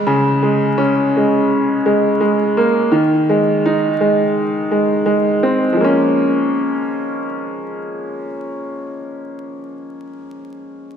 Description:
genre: hip hop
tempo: 84 BPM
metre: 4/4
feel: swing 62% on 16ths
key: Bb minor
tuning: A4 = 440 Hz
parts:
  - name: warm upright piano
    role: accompaniment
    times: 0.0-11.0 s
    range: Db3 to Eb4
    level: -15 LUFS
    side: equal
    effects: high-pass filter, low-pass filter
room: wet church reverb, RT60 2.8 s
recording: dreamy mix soaked in reverb, vinyl crackle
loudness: -13 LUFS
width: side -8 dB against mid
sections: 0.0-5.8 A section; 5.8-8.6 B section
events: none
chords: 0.0 Bbm7; 2.9 Ab; 5.8 Bbm7

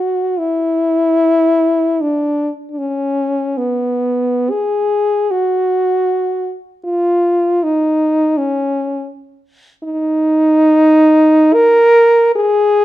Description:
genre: classical, free, expressive piece for unaccompanied French horn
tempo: free time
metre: none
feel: none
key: unclear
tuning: A4 = 440 Hz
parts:
  - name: mellow French horn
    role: solo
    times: 0.0-12.8 s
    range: B3 to Bb4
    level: -12 LUFS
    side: equal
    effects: none
room: moderate large studio reverb, RT60 1.1 s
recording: none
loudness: -12 LUFS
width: side -14 dB against mid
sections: 0.4-12.8 A section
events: none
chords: none

